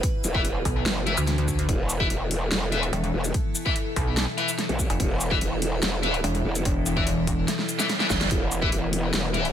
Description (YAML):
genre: heavy wobble dubstep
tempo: 145 BPM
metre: 4/4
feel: half-time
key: unclear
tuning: A4 = 441 Hz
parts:
  - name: evolving wavetable pad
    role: sustained chords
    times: 0.0-9.5 s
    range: B2 to B4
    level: -31 LUFS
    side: left 2 dB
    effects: phaser, built-in reverb, sidechain pumping
  - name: dubstep drum kit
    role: drums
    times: 0.0-9.5 s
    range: hi-hat, shaker, snare drum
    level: -28 LUFS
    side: equal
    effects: small room ambience
  - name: electronic kick drum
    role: drums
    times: 0.0-8.7 s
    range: none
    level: -27 LUFS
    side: equal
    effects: small room ambience
  - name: growl bass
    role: bass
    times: 0.2-9.5 s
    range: E1 to B1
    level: -27 LUFS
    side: equal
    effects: chorus, overdrive
  - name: distorted electric guitar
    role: stabs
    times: 0.3-9.4 s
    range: E4 to E5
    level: -30 LUFS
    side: left 4 dB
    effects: overdrive, ping-pong delay
  - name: pulsing pluck wobble bass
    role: bass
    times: 0.7-8.3 s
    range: E1 to D2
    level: -25 LUFS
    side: equal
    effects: chorus, overdrive
  - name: reverse cymbal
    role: sound effects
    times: 7.7-8.3 s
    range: none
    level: -33 LUFS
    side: right 5 dB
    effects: none
room: little or no reverb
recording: none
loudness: -22 LUFS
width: side -9 dB against mid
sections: 0.0-9.5 A section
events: drum fill 7.5-8.3; reverse cymbal 7.7-8.3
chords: 0.0 E5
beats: | 0.03 0.45 0.86 1.27 | 1.69 2.10 2.52 2.93 | 3.34 3.76 4.17 4.58 | 5.00 5.41 5.83 6.24 | 6.65 7.07 7.48 7.89 | 8.31 8.72 9.14